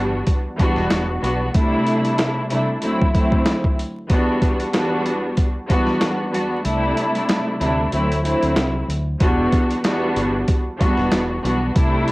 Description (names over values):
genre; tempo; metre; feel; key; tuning
hip hop, boom-bap hip-hop; 94 BPM; 4/4; swing 57% on 16ths; E minor; A4 = 440 Hz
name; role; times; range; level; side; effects
clear studio string section; accompaniment; 0.0-12.1 s; D2 to F#4; -19 LUFS; equal; cassette tape, high-pass filter, low-pass filter
deep dub fingered electric bass; bass; 0.0-1.5, 6.7-12.0 s; E1 to D2; -24 LUFS; equal; none
dusty soul sampler-style drum kit; drums; 0.3-12.1 s; hi-hat, kick drum, snare drum; -20 LUFS; equal; overdrive, cassette tape
room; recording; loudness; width
light reverb; home recording on cassette, vinyl crackle; -17 LUFS; side -21 dB against mid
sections
0.0-9.2 A section; 9.2-12.1 A section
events
kick muted 6.7-9.2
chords
0.0 Em7; 1.5 C6; 2.8 D7; 4.1 Em7; 6.7 C6; 7.9 D7; 9.2 Em7